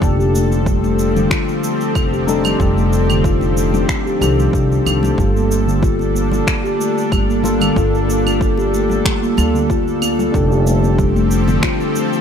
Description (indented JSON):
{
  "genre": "organic downtempo",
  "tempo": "93 BPM",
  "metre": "4/4",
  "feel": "swing 53% on 16ths",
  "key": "unclear",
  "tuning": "A4 = 441 Hz",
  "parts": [
    { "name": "muted felt-like synth keys", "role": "accompaniment", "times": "0.0-12.2 s", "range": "Eb3 to A4", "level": "-23 LUFS", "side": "left 3 dB", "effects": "chorus, sidechain pumping, ping-pong delay" },
    { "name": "bowed-like drone", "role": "sustained chords", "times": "0.0-12.2 s", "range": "F3 to A4", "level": "-23 LUFS", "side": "equal", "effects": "built-in reverb, sidechain pumping" },
    { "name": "upright bass", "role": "bass", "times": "0.0-11.6 s", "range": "F1 to D2", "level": "-18 LUFS", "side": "equal", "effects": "none" },
    { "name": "electronic cabasa, finger snaps and claves", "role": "drums", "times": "0.0-12.2 s", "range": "none", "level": "-24 LUFS", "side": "right 1 dB", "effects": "overdrive" },
    { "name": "electronic kick drum", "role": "drums", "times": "0.0-11.8 s", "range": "none", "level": "-20 LUFS", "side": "equal", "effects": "overdrive" },
    { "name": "steel tongue drum", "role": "arpeggios", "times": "0.2-12.1 s", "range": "D3 to G4", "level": "-18 LUFS", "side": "equal", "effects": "vintage 12-bit sampler grit, ping-pong delay" },
    { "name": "congas", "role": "percussion", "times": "0.5-11.9 s", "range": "none", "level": "-27 LUFS", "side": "left 1 dB", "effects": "none" }
  ],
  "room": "light reverb",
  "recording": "none",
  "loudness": "-13 LUFS",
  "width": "side -8 dB against mid",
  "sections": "0.0-12.2 A section",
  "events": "none",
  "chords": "0.0 F13; 5.2 Gm9; 10.3 F69"
}